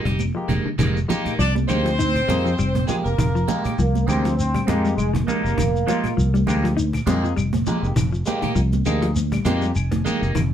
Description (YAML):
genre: afrobeat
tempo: 100 BPM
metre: 4/4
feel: swing 56% on 16ths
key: F dorian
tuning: A4 = 441 Hz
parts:
  - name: electric guitar at the edge of break-up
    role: stabs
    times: 0.0-10.4 s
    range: Ab3 to G4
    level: -27 LUFS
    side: right 4 dB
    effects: phaser
  - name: clean electric guitar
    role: arpeggios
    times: 0.1-10.5 s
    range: D3 to Eb4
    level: -27 LUFS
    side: left 4 dB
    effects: none
  - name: fingered electric bass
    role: bass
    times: 0.1-10.5 s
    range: F1 to F2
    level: -22 LUFS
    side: equal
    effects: none
  - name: cajon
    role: drums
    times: 0.1-10.5 s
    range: none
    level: -29 LUFS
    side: equal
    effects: none
  - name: claves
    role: percussion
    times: 0.2-10.5 s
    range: none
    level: -37 LUFS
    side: left 7 dB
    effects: none
  - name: congas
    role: percussion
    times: 0.2-10.5 s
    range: none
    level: -27 LUFS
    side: right 5 dB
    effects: none
  - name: shekere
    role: percussion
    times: 0.2-10.5 s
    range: none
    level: -31 LUFS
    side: left 2 dB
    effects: none
  - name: barky tine electric piano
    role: accompaniment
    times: 0.3-10.3 s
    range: Ab3 to Ab5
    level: -30 LUFS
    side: left 4 dB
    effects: medium stereo tremolo
  - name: clear horn section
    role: melody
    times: 1.4-3.6 s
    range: Ab3 to D5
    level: -25 LUFS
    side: right 1 dB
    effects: none
  - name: brilliant trombone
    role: second line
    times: 1.4-3.6 s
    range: Ab3 to D4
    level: -30 LUFS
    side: right 1 dB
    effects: none
  - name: mellow trombone section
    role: second line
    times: 3.8-6.4 s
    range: Ab3 to C4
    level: -25 LUFS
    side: right 1 dB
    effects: none
room: moderate studio ambience, RT60 0.5 s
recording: band playing live in one room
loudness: -18 LUFS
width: side -10 dB against mid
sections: 0.8-10.5 A section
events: tine electric piano fill 9.5-10.4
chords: 0.0 Fm11